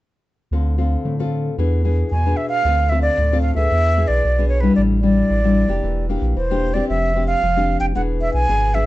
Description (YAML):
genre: samba and choro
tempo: 113 BPM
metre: 4/4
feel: straight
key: D minor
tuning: A4 = 440 Hz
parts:
  - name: nylon-string guitar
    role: accompaniment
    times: 0.5-8.9 s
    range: A2 to A4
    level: -22 LUFS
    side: left 4 dB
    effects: none
  - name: saturated sub bass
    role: bass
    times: 0.5-8.9 s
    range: E1 to D3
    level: -19 LUFS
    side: equal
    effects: none
  - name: breathy concert flute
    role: melody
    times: 2.1-8.9 s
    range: B4 to G#5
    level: -20 LUFS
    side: right 2 dB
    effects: none
room: moderate studio ambience, RT60 0.5 s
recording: dark, warm production, nothing above 8.0 kHz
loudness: -16 LUFS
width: side -16 dB against mid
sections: 0.5-2.6 A section; 2.6-8.9 B section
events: none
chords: 0.5 Dm7; 1.6 E7; 2.6 Dm7; 3.7 E7; 4.8 A7sus4; 5.8 Em7b5; 6.9 Dm7/F; 8.0 E7